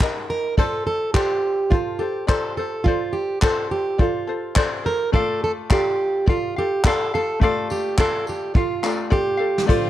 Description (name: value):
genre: acoustic pop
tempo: 105 BPM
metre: 4/4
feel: swing 60% on 16ths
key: F mixolydian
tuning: A4 = 441 Hz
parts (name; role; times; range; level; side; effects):
- ukulele; accompaniment; 0.0-9.9 s; Eb4 to F5; -26 LUFS; left 6 dB; none
- vintage brush drum kit; drums; 0.0-9.8 s; crash cymbal, handclaps, kick drum, snare drum, tambourine; -21 LUFS; equal; none
- fingerpicked plugged-in steel-string acoustic guitar; melody; 0.3-9.9 s; F4 to Bb4; -22 LUFS; right 3 dB; none
- bright upright piano; accompaniment; 5.1-9.9 s; A3 to D5; -31 LUFS; left 8 dB; none
- warm studio string section; sustained chords; 9.7-9.9 s; A2 to F4; -27 LUFS; equal; none
room: light reverb, small room ambience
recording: none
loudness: -19 LUFS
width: side -13 dB against mid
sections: 0.6-9.7 A section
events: drum fill 9.1-9.7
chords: 0.0 Eb; 0.6 F6; 5.1 Dm